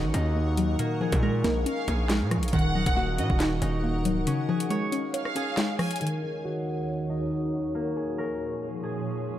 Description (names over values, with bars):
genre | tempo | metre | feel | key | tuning
hip hop, drill | 138 BPM | 4/4 | half-time | Eb minor | A4 = 440 Hz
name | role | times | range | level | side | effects
soft round pluck | accompaniment | 0.0-6.0 s | Bb2 to Db5 | -29 LUFS | equal | chorus, low-pass filter
granular cloud pad | sustained chords | 0.0-9.4 s | Eb2 to Db6 | -36 LUFS | right 1 dB | built-in reverb, low-pass filter
concert harp | arpeggios | 0.0-9.4 s | Eb3 to Db5 | -30 LUFS | equal | low-pass filter, digital delay
distorted 808-style bass | bass | 0.0-4.3 s | Db1 to Bb2 | -28 LUFS | equal | distortion
drill drum kit | drums | 0.1-6.1 s | handclaps, hi-hat, kick drum, rim click, snare drum | -29 LUFS | equal | none
warm symphonic violin section | second line | 1.7-6.0 s | Eb5 to Ab5 | -34 LUFS | right 1 dB | digital delay
room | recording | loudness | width
light reverb | none | -25 LUFS | side -12 dB against mid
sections
0.0-6.0 A section; 6.0-9.4 B section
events
break 4.3-6.0; filter sweep 6.0-9.4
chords
0.0 Ebm7; 0.8 Bbm7; 2.5 Ebm7; 4.3 Db; 6.0 Ebm7; 7.7 Bbm7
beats
0.36 | 0.79 1.23 1.66 2.10 | 2.53 2.97 3.40 3.83 | 4.27 4.71 5.14 5.57 | 6.01 6.44 6.88 7.31 | 7.75 8.18 8.62 9.05